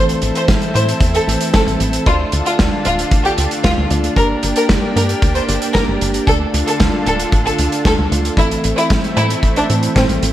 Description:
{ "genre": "italo disco", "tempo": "114 BPM", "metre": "4/4", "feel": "straight", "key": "D minor", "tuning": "A4 = 440 Hz", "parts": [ { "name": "rich chamber violin section", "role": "melody", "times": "0.0-10.0 s", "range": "C4 to C5", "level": "-19 LUFS", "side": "equal", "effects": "digital delay" }, { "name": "lush unison pad", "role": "sustained chords", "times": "0.0-10.3 s", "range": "D3 to A4", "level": "-22 LUFS", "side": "equal", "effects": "chorus, vintage 12-bit sampler grit" }, { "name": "mellow tine electric piano", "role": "stabs", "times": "0.0-10.3 s", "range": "E3 to D5", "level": "-22 LUFS", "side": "right 2 dB", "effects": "lush chorus" }, { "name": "tight sequencer bass", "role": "bass", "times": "0.0-10.3 s", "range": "D1 to A2", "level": "-19 LUFS", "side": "equal", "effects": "none" }, { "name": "loose indie drum kit", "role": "drums", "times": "0.1-10.3 s", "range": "hi-hat, snare drum", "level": "-20 LUFS", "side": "right 1 dB", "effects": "gated reverb" }, { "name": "kick drum", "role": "drums", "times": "0.5-10.1 s", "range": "none", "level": "-17 LUFS", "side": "equal", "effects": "none" } ], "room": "moderate lush hall reverb, RT60 1.8 s, studio ambience", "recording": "bright 1980s-style digital production, vinyl crackle", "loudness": "-13 LUFS", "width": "side -13 dB against mid", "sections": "0.0-10.3 A section", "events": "none", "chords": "0.0 Am; 2.1 Dm; 4.2 Gm; 6.3 Dm; 8.4 Am", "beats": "0.49 1.01 1.54 | 2.06 2.59 3.12 3.64 | 4.17 4.70 5.22 5.75 | 6.28 6.80 7.33 7.86 | 8.38 8.91 9.43 9.96" }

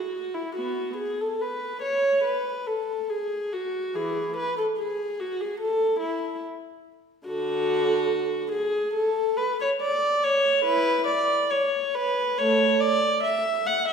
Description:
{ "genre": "classical, baroque-style suite movement for unaccompanied viola", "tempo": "71 BPM", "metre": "4/4", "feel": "rubato", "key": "A major", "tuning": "A4 = 440 Hz", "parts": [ { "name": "dark viola", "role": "solo", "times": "0.0-13.9 s", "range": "D3 to F#5", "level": "-23 LUFS", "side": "equal", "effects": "none" } ], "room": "wet scoring stage reverb, RT60 1.4 s", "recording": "recorded in a church or concert hall", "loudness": "-23 LUFS", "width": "side -6 dB against mid", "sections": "0.0-13.9 A section", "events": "none", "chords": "none", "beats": "| 0.55 1.40 2.25 3.10 | 3.95 4.78 5.61 6.42 | 7.25 8.09 8.93 9.79 | 10.64 11.49 12.36 13.22" }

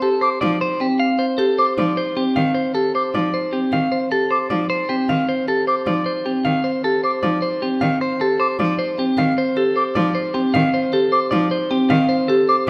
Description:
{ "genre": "classical, minimalist pattern music", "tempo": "308 BPM (eighths)", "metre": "7/8", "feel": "straight", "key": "C dorian", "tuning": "A4 = 440 Hz", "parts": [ { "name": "clean electric guitar", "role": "melody", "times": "0.0-12.7 s", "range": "G4 to F5", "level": "-24 LUFS", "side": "equal", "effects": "none" }, { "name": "marimba with medium mallets", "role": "arpeggios", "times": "0.0-12.5 s", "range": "C4 to G4", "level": "-23 LUFS", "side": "equal", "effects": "none" }, { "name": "mellow concert flute", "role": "arpeggios", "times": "0.2-12.6 s", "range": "D6", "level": "-24 LUFS", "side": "equal", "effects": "none" }, { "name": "rich cello", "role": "accompaniment", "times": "0.4-12.7 s", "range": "Eb3 to F3", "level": "-27 LUFS", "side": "equal", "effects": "none" } ], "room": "moderate scoring stage reverb, RT60 1.7 s", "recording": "none", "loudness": "-19 LUFS", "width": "mono", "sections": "0.0-12.7 A section", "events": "none", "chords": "0.0 Cm", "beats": "| 0.02 0.22 0.41 0.61 0.80 1.00 1.19 | 1.39 1.58 1.77 1.97 2.17 2.36 2.55 | 2.75 2.94 3.14 3.33 3.53 3.72 3.92 | 4.11 4.31 4.50 4.70 4.89 5.09 5.28 | 5.48 5.67 5.87 6.06 6.26 6.45 6.64 | 6.84 7.04 7.23 7.42 7.62 7.81 8.01 | 8.20 8.40 8.59 8.79 8.98 9.18 9.37 | 9.57 9.76 9.96 10.15 10.35 10.54 10.74 | 10.93 11.13 11.32 11.52 11.71 11.90 12.10 | 12.29 12.49 12.68" }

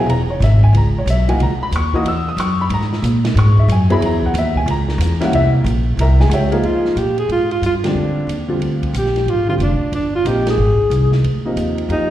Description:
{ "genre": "modal jazz", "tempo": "183 BPM", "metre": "4/4", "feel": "swing 64% on 8ths", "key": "C# dorian, F dorian from 6.6 s", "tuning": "A4 = 441 Hz", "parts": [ { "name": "warm upright piano", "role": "accompaniment", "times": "0.0-12.1 s", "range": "C3 to E6", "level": "-20 LUFS", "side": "left 1 dB", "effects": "slapback echo" }, { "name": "upright bass", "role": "bass", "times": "0.1-12.1 s", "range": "E1 to A#2", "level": "-16 LUFS", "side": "equal", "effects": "none" }, { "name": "open jazz drum kit", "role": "drums", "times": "0.1-12.0 s", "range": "hi-hat, kick drum, ride cymbal, snare drum", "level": "-26 LUFS", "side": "right 2 dB", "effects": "none" }, { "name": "breathy alto saxophone", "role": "melody", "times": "6.6-12.1 s", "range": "D4 to Ab4", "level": "-18 LUFS", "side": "right 1 dB", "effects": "slapback echo" } ], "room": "light reverb", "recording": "live gig heard through the venue's PA, recital hall reverb", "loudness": "-14 LUFS", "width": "side -13 dB against mid", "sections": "0.0-6.6 A section; 6.6-12.1 B section", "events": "band accent 7.8, 10.4", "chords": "0.0 C#m9; 5.3 C7b9; 6.6 Fm69", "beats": "| 0.09 0.42 0.74 1.07 | 1.40 1.73 2.06 2.38 | 2.71 3.04 3.36 3.69 | 4.02 4.35 4.67 5.00 | 5.33 5.66 5.98 6.31 | 6.64 6.97 7.29 7.62 | 7.95 8.28 8.61 8.94 | 9.27 9.60 9.92 10.25 | 10.58 10.91 11.24 11.57 | 11.90" }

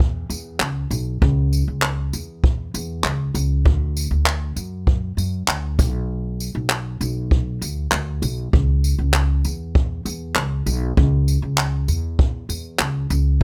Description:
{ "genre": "acoustic pop", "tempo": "98 BPM", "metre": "4/4", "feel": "straight", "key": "B minor", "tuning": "A4 = 439 Hz", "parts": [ { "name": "upright bass", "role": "bass", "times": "0.0-13.4 s", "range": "B1 to F#2", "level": "-24 LUFS", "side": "equal", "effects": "none" }, { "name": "jazz brush drum kit", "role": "drums", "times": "0.0-13.4 s", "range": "handclaps, kick drum, tambourine", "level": "-22 LUFS", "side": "equal", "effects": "none" } ], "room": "little or no reverb", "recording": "none", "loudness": "-21 LUFS", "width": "mono", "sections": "0.0-13.4 A section", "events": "none", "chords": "none", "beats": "0.00 0.61 | 1.22 1.83 2.44 3.05 | 3.66 4.27 4.88 5.49 | 6.10 6.71 7.32 7.93 | 8.54 9.15 9.76 10.37 | 10.97 11.59 12.19 12.80 | 13.41" }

